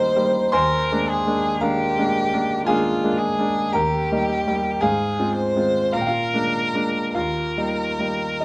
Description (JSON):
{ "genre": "classical, romantic duo for violin and grand piano", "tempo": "48-57 BPM", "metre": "3/4", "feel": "rubato", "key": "Eb major", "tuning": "A4 = 438 Hz", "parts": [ { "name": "rich violin", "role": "melody", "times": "0.0-8.4 s", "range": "F4 to C5", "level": "-25 LUFS", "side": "equal", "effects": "none" }, { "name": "bright grand piano", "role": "accompaniment", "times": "0.0-8.4 s", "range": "Eb2 to C6", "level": "-24 LUFS", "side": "equal", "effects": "none" } ], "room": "light reverb", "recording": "close, detailed microphones", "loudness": "-21 LUFS", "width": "mono", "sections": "0.0-8.4 A section", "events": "none", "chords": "0.0 Eb; 0.5 Bb7/Eb; 3.7 Eb; 4.8 Fm/Ab; 5.9 Bb7; 7.2 Eb", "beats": "| 0.53 1.61 2.67 | 3.73 4.82 5.94 | 7.15 8.40" }